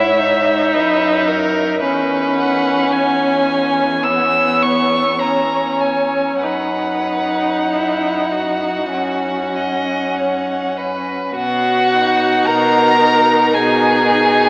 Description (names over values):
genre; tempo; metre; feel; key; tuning
classical, slow romantic movement for string quartet; 47-56 BPM; 4/4; rubato; B major; A4 = 441 Hz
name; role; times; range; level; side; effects
warm violin; melody; 0.0-14.5 s; E5 to E6; -20 LUFS; equal; none
rich violin; second line; 0.0-14.5 s; E4 to D#5; -22 LUFS; equal; none
warm viola; accompaniment; 0.0-14.5 s; B3 to E4; -21 LUFS; equal; none
dark cello; bass; 0.0-14.5 s; E2 to B2; -27 LUFS; equal; none
room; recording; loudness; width
wet cathedral reverb, RT60 7.4 s; in a vast, echoing space, vinyl crackle, AM radio sound; -16 LUFS; mono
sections
0.0-11.4 A section; 11.4-14.5 B section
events
none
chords
0.0 C#m/G#; 1.8 C#m7/E; 6.4 F#sus4; 8.9 F#5; 11.4 B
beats
0.73 | 1.82 2.92 4.04 5.21 | 6.43 7.68 8.94 10.17 | 11.36 12.46 13.53